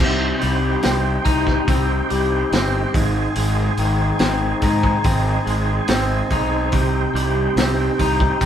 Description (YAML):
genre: psychedelic rock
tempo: 71 BPM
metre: 4/4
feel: straight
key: C minor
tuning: A4 = 440 Hz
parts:
  - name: tonewheel organ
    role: sustained chords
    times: 0.0-8.5 s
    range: Eb4 to Ab5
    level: -24 LUFS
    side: right 3 dB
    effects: chorus vibrato, fast rotary speaker
  - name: electric guitar at the edge of break-up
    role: riff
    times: 0.0-8.5 s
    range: Ab2 to Eb4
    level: -21 LUFS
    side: left 2 dB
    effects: phaser
  - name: fuzz fingered electric bass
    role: bass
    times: 0.0-8.5 s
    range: G1 to Ab2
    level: -22 LUFS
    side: equal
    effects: overdrive
  - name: crunchy breakbeat drum kit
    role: drums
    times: 0.0-8.5 s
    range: hi-hat, kick drum, snare drum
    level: -22 LUFS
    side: equal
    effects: none
room: moderate small room reverb, RT60 0.5 s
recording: band playing live in one room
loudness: -16 LUFS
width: side -9 dB against mid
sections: 0.0-8.5 A section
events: none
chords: 0.0 Cm; 2.9 Ab; 6.7 Cm